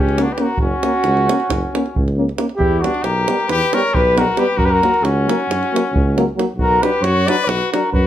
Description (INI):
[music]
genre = balkan folk, Balkan brass band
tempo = 271 BPM (eighths)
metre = 9/8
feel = straight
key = F# phrygian dominant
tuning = A4 = 441 Hz
[part]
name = mellow flugelhorn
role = melody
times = 0.0-8.1 s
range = F#4 to D5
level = -18 LUFS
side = equal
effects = none
[part]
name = bright trumpet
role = second line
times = 0.0-8.1 s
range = C#4 to B4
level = -22 LUFS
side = left 5 dB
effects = slapback echo
[part]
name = mellow tuba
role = bass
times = 0.0-8.1 s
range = F#1 to F#2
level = -20 LUFS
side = equal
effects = none
[part]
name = davul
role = percussion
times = 0.1-8.0 s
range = none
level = -22 LUFS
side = right 2 dB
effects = none
[part]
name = clear trombone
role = accompaniment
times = 0.2-7.8 s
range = F#3 to A#3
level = -24 LUFS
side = right 4 dB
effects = none
[part]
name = mellow euphonium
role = accompaniment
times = 0.2-7.8 s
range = A#3 to D4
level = -23 LUFS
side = left 5 dB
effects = none
[sound]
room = moderate studio reverb, RT60 0.6 s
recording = none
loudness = -14 LUFS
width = side -11 dB against mid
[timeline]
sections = 0.0-2.6 A section; 2.6-8.1 B section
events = none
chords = 0.0 F#; 2.6 Em; 4.6 F#; 6.6 Bm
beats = 0.15 0.37 | 0.59 0.81 1.03 1.26 1.48 1.70 1.92 2.14 2.36 | 2.59 2.81 3.03 3.25 3.47 3.69 3.91 4.13 4.36 | 4.58 4.80 5.02 5.24 5.46 5.68 5.91 6.13 6.35 | 6.57 6.79 7.01 7.23 7.45 7.67 7.89